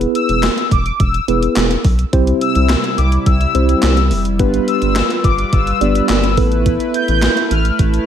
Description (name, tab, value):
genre	synth-pop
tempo	106 BPM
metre	4/4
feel	straight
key	A minor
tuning	A4 = 440 Hz
part	mellow tine electric piano	accompaniment	0.0-7.3 s	B3 to D5	-18 LUFS	right 1 dB	medium stereo tremolo
part	rubbery square bass	bass	0.0-8.0 s	E1 to C2	-16 LUFS	equal	none
part	gated 80s digital drum machine	drums	0.0-8.1 s	handclaps, hi-hat, kick drum, snare drum	-17 LUFS	equal	gated reverb, gated reverb snare
part	mellow synth brass	melody	0.1-7.8 s	D6 to G6	-20 LUFS	left 4 dB	chorus, ping-pong delay
part	chorused pulse-width pad	sustained chords	2.1-8.1 s	C3 to B4	-22 LUFS	right 1 dB	none
room	light reverb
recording	none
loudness	-12 LUFS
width	side -9 dB against mid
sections	0.0-8.1 A section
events	none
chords	0.0 E; 2.1 C; 4.4 G7; 6.4 Asus2